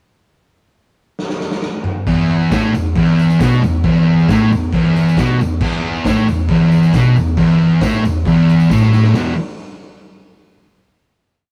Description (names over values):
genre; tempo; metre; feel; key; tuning
garage rock duo or trio; 135 BPM; 4/4; straight; unclear; A4 = 440 Hz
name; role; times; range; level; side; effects
raw garage drum kit; drums; 1.2-9.2 s; crash cymbal, hi-hat, kick drum, snare drum, toms; -24 LUFS; equal; none
fuzz guitar; riff; 2.1-9.3 s; E2 to E3; -14 LUFS; equal; distortion
tambourine; percussion; 2.4-9.4 s; none; -43 LUFS; equal; none
room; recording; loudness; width
light reverb; rough rehearsal-room recording; -14 LUFS; mono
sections
0.3-2.1 pickup bar; 2.1-9.2 riff; 9.2-10.9 final chord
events
drum fill 1.2-2.1, 8.7-9.2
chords
0.3 N.C.; 2.1 E5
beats
| 0.29 0.74 1.18 1.63 | 2.07 2.52 2.96 3.40 | 3.85 4.29 4.73 5.17 | 5.62 6.06 6.50 6.94 | 7.38 7.83 8.27 8.71 | 9.15